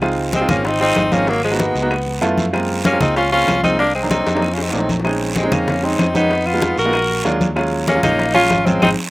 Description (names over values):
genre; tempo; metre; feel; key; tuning
Afro-Cuban jazz; 191 BPM; 4/4; straight; Db major; A4 = 440 Hz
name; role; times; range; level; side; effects
clear grand piano; accompaniment; 0.0-8.9 s; Gb3 to A5; -21 LUFS; right 2 dB; none
fingered electric bass; bass; 0.0-8.9 s; Ab1 to Gb2; -24 LUFS; equal; none
bongos; percussion; 0.0-8.9 s; none; -28 LUFS; left 3 dB; slapback echo
claves; percussion; 0.0-8.9 s; none; -28 LUFS; left 2 dB; none
congas; percussion; 0.0-8.9 s; none; -21 LUFS; left 1 dB; none
guiro; percussion; 0.0-8.9 s; none; -30 LUFS; right 4 dB; none
edgy tenor saxophone; second line; 0.3-8.9 s; F3 to Gb4; -21 LUFS; left 2 dB; none
breathy tenor saxophone; melody; 0.4-8.9 s; Ab3 to Bb4; -18 LUFS; equal; none
room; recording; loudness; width
little or no reverb; recorded outdoors, with no room sound; -14 LUFS; side -20 dB against mid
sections
0.0-9.1 A section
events
grand piano fill 2.1-2.5; drum fill 4.3-5.0; band accent 8.8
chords
0.0 Dbmaj9; 1.3 Abm9; 1.9 Db7alt; 2.5 Gbmaj9#11; 3.8 Cm7b5; 4.4 F7b9; 5.0 Bbm11; 6.3 Fm7b5; 6.9 Bb7b13; 7.6 Ebm11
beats
| 0.02 0.33 0.65 0.96 | 1.28 1.59 1.91 2.22 | 2.54 2.85 3.16 3.48 | 3.79 4.11 4.42 4.74 | 5.05 5.36 5.68 5.99 | 6.31 6.62 6.94 7.25 | 7.56 7.88 8.19 8.51 | 8.82